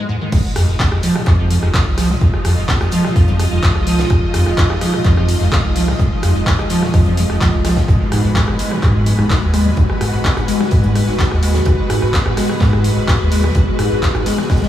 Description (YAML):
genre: acid house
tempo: 127 BPM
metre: 4/4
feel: straight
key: F minor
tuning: A4 = 441 Hz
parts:
  - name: liquid acid bass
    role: riff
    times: 0.0-14.7 s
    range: F2 to Ab3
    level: -19 LUFS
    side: equal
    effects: tube saturation, analog chorus, sidechain pumping, tape echo
  - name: string machine, full ensemble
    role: sustained chords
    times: 0.3-14.7 s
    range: Ab3 to Eb5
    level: -21 LUFS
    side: equal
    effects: phaser, ensemble chorus, sidechain pumping
  - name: round analog bass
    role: bass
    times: 0.3-14.7 s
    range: Eb1 to Ab2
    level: -18 LUFS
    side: equal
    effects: sidechain pumping
  - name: deep reggae drum kit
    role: drums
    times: 0.3-14.7 s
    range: hi-hat, snare drum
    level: -33 LUFS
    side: right 2 dB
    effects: none
  - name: electronic kick drum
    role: drums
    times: 0.3-14.6 s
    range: none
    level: -16 LUFS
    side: equal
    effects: none
  - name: punchy analog drum machine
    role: drums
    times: 0.3-14.7 s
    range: congas, crash cymbal, handclaps, hi-hat, rim click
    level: -22 LUFS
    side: left 1 dB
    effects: none
room: moderate huge ambient reverb, RT60 7.3 s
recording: dreamy mix soaked in reverb, small room reverb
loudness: -12 LUFS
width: side -12 dB against mid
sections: 0.3-14.7 A section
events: break 0.0-0.3; drop 0.3-14.7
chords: 0.3 Fm7; 7.9 Abm7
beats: | 0.33 0.80 1.27 1.74 | 2.21 2.69 3.16 3.63 | 4.11 4.58 5.05 5.52 | 5.99 6.47 6.94 7.41 | 7.88 8.36 8.83 9.30 | 9.77 10.25 10.72 11.19 | 11.66 12.14 12.61 13.08 | 13.55 14.03 14.50